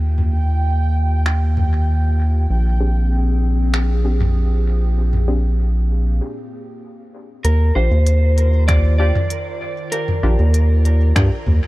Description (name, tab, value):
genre	ambient dub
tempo	97 BPM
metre	4/4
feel	straight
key	unclear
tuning	A4 = 436 Hz
part	warbly tape-like pad	sustained chords	0.0-11.7 s	Bb2 to F5	-30 LUFS	left 1 dB	chorus, built-in reverb
part	round analog bass	bass	0.0-11.6 s	Bb1 to G2	-15 LUFS	equal	none
part	bubbling stepped-filter texture	texture	0.0-6.2 s	G5	-31 LUFS	right 4 dB	chorus, built-in reverb
part	organic electronic drum kit	drums	0.2-11.6 s	finger snaps, hi-hat, toms	-24 LUFS	equal	none
part	filtered dub chord stab	stabs	0.3-11.3 s	C4 to Ab4	-30 LUFS	left 3 dB	chorus, dub echo
part	electric slide guitar	melody	7.4-11.7 s	Bb4 to D5	-24 LUFS	right 1 dB	dub echo
part	electronic kick drum	drums	8.7-11.3 s	none	-20 LUFS	equal	none
room	digital ambience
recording	none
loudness	-15 LUFS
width	side -18 dB against mid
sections	0.0-7.4 A section; 7.4-11.7 B section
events	filter sweep on synth stab 0.0-7.4; break 6.2-7.4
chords	0.0 Ebmaj9; 2.5 Bb13; 7.4 Ebmaj9